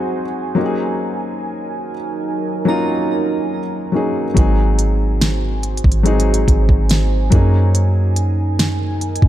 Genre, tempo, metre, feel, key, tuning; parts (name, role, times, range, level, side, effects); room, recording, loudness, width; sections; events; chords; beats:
contemporary R&B; 71 BPM; 4/4; straight; A4 = 440 Hz
dark baby grand piano; accompaniment; 0.0-9.3 s; Gb3 to Ab4; -20 LUFS; left 3 dB
deep dark ambient pad; sustained chords; 0.0-9.3 s; Gb3 to Ab5; -24 LUFS; right 4 dB; chorus, built-in reverb
glassy synth bell; texture; 2.7-4.8 s; Bb5; -30 LUFS; right 3 dB; chorus, digital delay
soft 808-style bass; bass; 4.4-9.3 s; Ab1 to Gb2; -16 LUFS; equal
smooth R&B drum kit; drums; 4.4-9.3 s; hi-hat, kick drum, snare drum; -16 LUFS; equal
light reverb; dark, warm production; -15 LUFS; side -13 dB against mid
0.0-9.3 A section
0.0 Ab7; 0.6 Gb69; 4.4 Ab7; 7.3 Gb69
0.14 | 0.98 1.83 2.67 3.52 | 4.37 5.21 6.05 6.90 | 7.75 8.59